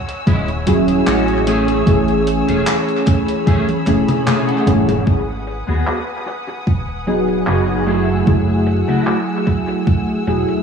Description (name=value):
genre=vaporwave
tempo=75 BPM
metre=4/4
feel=swing 53% on 16ths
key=unclear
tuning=A4 = 439 Hz
part: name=rich symphonic string section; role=sustained chords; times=0.0-10.6 s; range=A3 to E6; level=-27 LUFS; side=equal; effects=none
part: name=gated 80s digital drum machine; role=drums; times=0.1-10.6 s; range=handclaps, hi-hat, toms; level=-24 LUFS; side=equal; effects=gated reverb, low-pass filter on hats, studio reverb, low-pass filter on snare, low-pass filter on toms, tape echo
part: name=clean electric guitar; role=riff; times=0.3-9.9 s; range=G#3 to G#5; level=-23 LUFS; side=left 1 dB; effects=ensemble chorus, low-pass filter, tape echo
part: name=chorused synth bass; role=bass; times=0.3-10.4 s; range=D#1 to D#2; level=-21 LUFS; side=equal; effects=none
part: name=electronic kick drum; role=drums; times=0.3-10.0 s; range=none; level=-15 LUFS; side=equal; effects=studio reverb
part: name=warbly lo-fi synth keys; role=accompaniment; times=0.7-10.6 s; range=E3 to G#4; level=-17 LUFS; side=equal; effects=analog chorus, tape echo
room=moderate spring reverb, RT60 2.5 s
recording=echo-heavy mix, small room ambience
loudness=-14 LUFS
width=side -6 dB against mid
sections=0.0-5.1 A section; 5.1-10.6 B section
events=drum fill 3.5-5.1; clean electric guitar fill 3.9-5.1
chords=0.0 E69; 1.5 Amaj7; 5.1 G#m7; 7.9 F#m9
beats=0.27 1.07 | 1.87 2.67 3.47 4.27 | 5.07 5.87 6.67 7.47 | 8.27 9.07 9.87